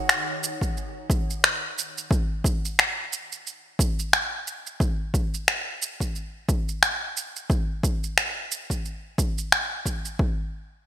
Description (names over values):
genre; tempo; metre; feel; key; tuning
organic downtempo; 89 BPM; 4/4; swing 57% on 16ths; none; none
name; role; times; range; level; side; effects
electronic finger snaps and shaker; drums; 0.1-10.2 s; none; -22 LUFS; equal; overdrive, studio reverb, gated reverb
electronic kick drum; drums; 0.6-10.3 s; none; -25 LUFS; equal; overdrive, studio reverb
room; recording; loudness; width
light reverb, digital ambience; bright 1980s-style digital production; -23 LUFS; side -11 dB against mid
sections
0.0-10.2 A section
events
none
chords
none